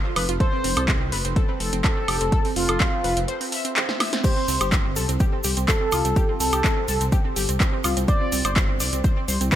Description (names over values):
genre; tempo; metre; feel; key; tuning
progressive house; 125 BPM; 4/4; straight; unclear; A4 = 440 Hz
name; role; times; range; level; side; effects
analog pluck; arpeggios; 0.0-9.6 s; C4 to E5; -29 LUFS; right 1 dB; chorus, sidechain pumping, digital delay
dark detuned saw bass; bass; 0.2-9.5 s; F1 to C2; -26 LUFS; equal; sidechain pumping
deep house drum kit; drums; 0.2-9.6 s; crash cymbal, handclaps, hi-hat, snare drum, woodblock; -25 LUFS; equal; overdrive, sidechain pumping on hats, sidechain pumping on perc, sidechain pumping on cymbals
expressive synth lead; melody; 0.4-9.6 s; F4 to D5; -29 LUFS; equal; chorus, digital delay
airy dreamy lead; second line; 0.4-9.6 s; F4 to D5; -34 LUFS; equal; none
electronic kick drum; drums; 0.4-9.6 s; none; -22 LUFS; equal; overdrive
tube shaker; percussion; 4.2-9.6 s; none; -33 LUFS; right 3 dB; none
room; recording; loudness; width
digital ambience; none; -19 LUFS; side -11 dB against mid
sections
0.0-9.6 A section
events
break 3.3-4.2; drum fill 3.9-4.2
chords
0.0 F; 4.2 C5